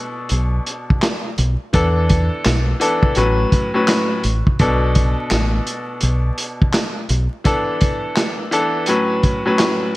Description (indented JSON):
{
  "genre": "hip hop, boom-bap hip-hop",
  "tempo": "84 BPM",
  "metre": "4/4",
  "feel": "swing 62% on 16ths",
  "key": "B minor",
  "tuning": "A4 = 440 Hz",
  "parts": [
    { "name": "bright grand piano", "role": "accompaniment", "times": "0.0-9.9 s", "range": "A2 to B4", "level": "-19 LUFS", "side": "left 1 dB", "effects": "cassette tape, high-pass filter, low-pass filter" },
    { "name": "deep dub fingered electric bass", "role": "bass", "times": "0.3-7.3 s", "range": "A1 to E2", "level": "-17 LUFS", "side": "equal", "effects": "none" },
    { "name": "vintage drum kit", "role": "drums", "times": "0.3-9.8 s", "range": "handclaps, hi-hat, kick drum, snare drum", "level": "-18 LUFS", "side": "equal", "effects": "gated reverb" }
  ],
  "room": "light reverb, small room ambience",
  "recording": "bright 1980s-style digital production, vinyl crackle",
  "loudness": "-15 LUFS",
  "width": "side -18 dB against mid",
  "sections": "0.0-10.0 A section",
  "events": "none",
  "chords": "0.0 Bm7; 1.7 E7sus4; 3.2 A69; 4.6 Bm7; 7.5 E7sus4; 8.9 A69",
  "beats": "0.31 1.02 | 1.74 2.45 3.17 3.88 | 4.60 5.31 6.02 6.74 | 7.45 8.17 8.88 9.60"
}